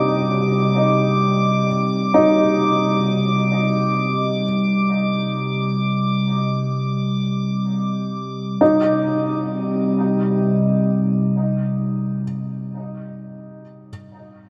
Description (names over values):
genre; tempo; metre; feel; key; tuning
ambient; free time; none; none; C minor; A4 = 440 Hz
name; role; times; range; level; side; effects
felt-muted upright piano; arpeggios; 0.0-13.9 s; Eb4; -24 LUFS; equal; diffuse ambient delay, shimmer reverb
analog drone; drone; 0.0-12.2 s; C3 to G3; -22 LUFS; equal; chorus
drifting glass-harmonics texture; texture; 0.0-8.6 s; D6; -28 LUFS; equal; chorus, built-in reverb, shimmer reverb
room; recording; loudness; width
wet cathedral reverb, RT60 7.0 s; cassette tape; -19 LUFS; mono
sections
0.0-8.6 A section; 8.6-11.4 B section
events
none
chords
0.0 Cmadd9; 8.6 Cm